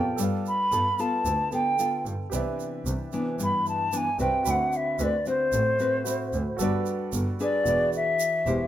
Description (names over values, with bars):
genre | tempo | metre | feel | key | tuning
bossa nova | 112 BPM | 4/4 | straight | G major | A4 = 440 Hz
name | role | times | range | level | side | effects
hollow concert flute | melody | 0.0-8.7 s | C5 to B5 | -25 LUFS | equal | none
nylon-string guitar | accompaniment | 0.0-8.7 s | G2 to C5 | -30 LUFS | left 2 dB | none
warm grand piano | accompaniment | 0.0-8.7 s | F#4 to B5 | -35 LUFS | right 5 dB | none
clear double bass | bass | 0.2-8.5 s | E1 to G2 | -30 LUFS | right 1 dB | none
tube shaker | percussion | 0.2-8.7 s | none | -38 LUFS | right 9 dB | none
room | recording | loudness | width
light reverb | minimal, uncompressed stereo recording | -23 LUFS | side -12 dB against mid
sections
0.0-8.7 A section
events
flute solo 0.0-8.7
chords
0.2 G9; 2.3 Cmaj9; 4.5 D13; 6.6 Gmaj7; 7.7 E7